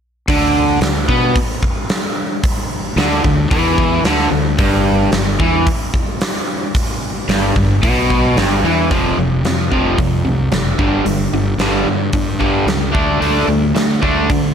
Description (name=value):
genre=classic rock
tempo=111 BPM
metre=4/4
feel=straight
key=unclear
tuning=A4 = 440 Hz
part: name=crunchy overdriven guitar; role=riff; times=0.3-14.5 s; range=F2 to D4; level=-15 LUFS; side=equal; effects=none
part: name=fuzz fingered electric bass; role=bass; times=0.3-14.5 s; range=F1 to D3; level=-20 LUFS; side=equal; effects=overdrive
part: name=huge arena drum kit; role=drums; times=0.3-14.4 s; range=hi-hat, kick drum, snare drum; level=-18 LUFS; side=equal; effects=none
room=light reverb, studio reverb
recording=none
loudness=-13 LUFS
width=side -8 dB against mid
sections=0.3-8.9 A section; 8.9-14.5 B section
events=none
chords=0.3 Dsus2; 4.6 G6; 8.9 F5; 10.8 G5; 12.9 D5